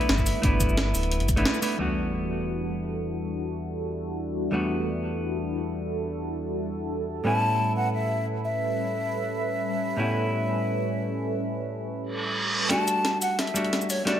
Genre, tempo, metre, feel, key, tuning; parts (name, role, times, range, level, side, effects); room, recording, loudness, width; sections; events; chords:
liquid drum and bass; 176 BPM; 4/4; straight; E dorian; A4 = 440 Hz
breathy mellow silver concert flute; melody; 0.0-1.5, 7.3-14.2 s; C#5 to A5; -29 LUFS; left 1 dB; tape echo
hollow-body jazz guitar; accompaniment; 0.0-14.2 s; E2 to F#4; -29 LUFS; equal; low-pass filter, tape echo
warm analog pad; sustained chords; 0.0-14.2 s; G3 to B4; -32 LUFS; right 1 dB; chorus, phaser, sidechain pumping
breakbeat sampler-style drum kit; drums; 0.0-1.7, 12.7-14.1 s; hi-hat, shaker, snare drum; -28 LUFS; equal; high-pass filter on snare, low-pass filter on snare, high-pass filter on hats, low-pass filter on hats, high-pass filter on perc, low-pass filter on perc
sub bass with octave; bass; 0.1-1.5 s; D1 to G1; -26 LUFS; equal
electronic kick drum; drums; 0.2-1.4 s; -25 LUFS; equal
sub drop, reverse cymbal and riser; sound effects; 1.8-3.2, 12.1-14.2 s; -31 LUFS; right 1 dB
light reverb; -24 LUFS; side -10 dB against mid
0.0-1.8 A section; 1.8-12.7 B section; 12.7-14.2 C section
drop 0.0-1.8; band accent 1.5; impact 1.8-3.2; filter sweep on drum 1.8-12.7; reverse cymbal 12.1-12.7; build-up 12.7-14.2; drum fill 12.7-14.2
0.0 G6; 1.8 Em11; 7.3 A9; 12.7 Em11